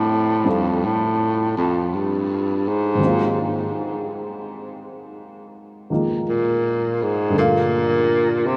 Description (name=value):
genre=jazz ballad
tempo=55 BPM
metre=4/4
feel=swing 67% on 8ths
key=unclear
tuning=A4 = 440 Hz
part: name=mellow baritone saxophone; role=melody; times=0.0-8.6 s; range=F2 to C3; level=-22 LUFS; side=equal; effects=diffuse ambient delay
part: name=warm baby grand piano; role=accompaniment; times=0.0-8.6 s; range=F2 to F5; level=-27 LUFS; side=equal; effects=lush chorus
room=wet huge ambient reverb, RT60 4.0 s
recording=dreamy mix soaked in reverb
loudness=-21 LUFS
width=mono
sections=0.0-8.6 A section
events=none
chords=0.0 Fmaj9; 3.0 Ab13; 7.3 Gm9